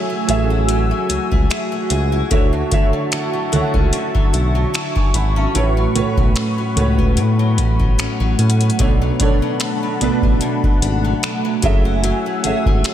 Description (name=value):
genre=contemporary R&B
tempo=74 BPM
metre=4/4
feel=swing 54% on 16ths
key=F# minor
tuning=A4 = 441 Hz
part: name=warm baby grand piano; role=accompaniment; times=0.0-12.9 s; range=A2 to C#6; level=-21 LUFS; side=right 2 dB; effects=ensemble chorus
part: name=warm analog pad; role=sustained chords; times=0.0-12.9 s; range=A3 to E6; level=-23 LUFS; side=right 1 dB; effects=chorus, sidechain pumping
part: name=picked old ladder-braced acoustic guitar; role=arpeggios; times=0.0-12.9 s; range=A2 to G#4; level=-25 LUFS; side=left 6 dB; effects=wide subtle chorus, diffuse ambient delay
part: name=smooth synth bass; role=bass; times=0.3-12.8 s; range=F#1 to A2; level=-18 LUFS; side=equal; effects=none
part: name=booming analog drum machine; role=drums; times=0.3-12.9 s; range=finger snaps, hi-hat, kick drum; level=-19 LUFS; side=equal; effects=none
room=light reverb, digital ambience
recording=none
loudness=-15 LUFS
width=side -11 dB against mid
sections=0.0-12.9 A section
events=grand piano fill 1.1-2.3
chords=0.0 F#m9; 2.3 Dmaj9; 5.5 A69; 8.8 Bm7; 11.6 F#m9